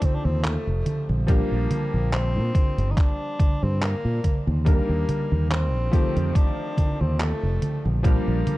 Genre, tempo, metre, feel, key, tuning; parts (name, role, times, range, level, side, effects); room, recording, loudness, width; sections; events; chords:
vaporwave; 71 BPM; 4/4; swing 55% on 16ths; Bb major; A4 = 440 Hz
clear tenor saxophone; melody; 0.0-8.6 s; A3 to Eb4; -31 LUFS; left 1 dB; tape echo
warm electric grand piano; accompaniment; 0.0-8.6 s; Eb3 to Bb4; -31 LUFS; left 1 dB; wide subtle chorus
detuned 8-bit digital drum machine; drums; 0.0-8.6 s; congas, handclaps, hi-hat; -29 LUFS; right 1 dB
electronic kick drum; drums; 0.0-8.2 s; -20 LUFS; equal
fretless electric bass; bass; 0.2-8.4 s; F1 to Bb2; -23 LUFS; equal
digital ambience; dark, warm production, cassette tape; -20 LUFS; side -18 dB against mid
0.0-8.6 A section
0.0 F9; 1.3 Bb6; 4.7 Ebmaj7; 5.9 F9; 8.0 Bb6